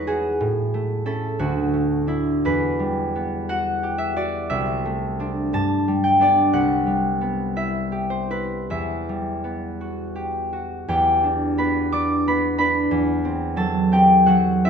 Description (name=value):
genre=classical, solo harp piece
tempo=50-63 BPM (dotted quarters)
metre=6/8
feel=rubato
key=E minor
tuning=A4 = 441 Hz
part: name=concert harp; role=solo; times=0.0-14.7 s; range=C2 to D6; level=-19 LUFS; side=equal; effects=none
room=moderate recital hall reverb, RT60 1.3 s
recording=none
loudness=-19 LUFS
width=side -7 dB against mid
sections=0.0-10.9 A section; 10.9-14.7 B section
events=none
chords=0.4 Amaj7; 1.4 Dadd9; 2.4 Emadd9; 4.5 C69; 5.5 Gadd9; 6.5 Cmaj7; 8.7 Emadd9; 10.9 Em9; 12.9 Cmaj7#11/E